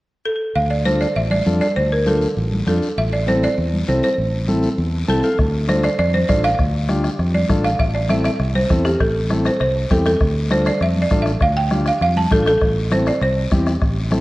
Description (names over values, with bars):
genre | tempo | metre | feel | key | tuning
latin, cumbia | 199 BPM | 4/4 | straight | D minor | A4 = 441 Hz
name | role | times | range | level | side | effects
folk marimba with hard mallets | melody | 0.3-14.2 s | G4 to A5 | -20 LUFS | right 1 dB | slapback echo
fingered electric bass | bass | 0.6-14.2 s | A1 to F2 | -20 LUFS | equal | none
guiro | percussion | 0.6-14.2 s | none | -36 LUFS | left 4 dB | none
combo organ | accompaniment | 0.9-14.2 s | C4 to A5 | -24 LUFS | left 1 dB | spring reverb
congas | percussion | 0.9-14.2 s | none | -25 LUFS | equal | none
bombo | percussion | 5.4-14.2 s | none | -23 LUFS | equal | none
room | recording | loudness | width
moderate recital hall reverb, RT60 1.5 s | worn, warbling old tape, cassette tape, warbly pitch drift | -16 LUFS | side -18 dB against mid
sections
0.6-5.4 A section; 5.4-14.2 B section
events
transistor combo organ fill 4.9-5.4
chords
0.0 N.C.; 0.6 Dm; 3.0 Am; 5.4 Dm; 7.8 Am; 10.2 Dm; 12.6 Am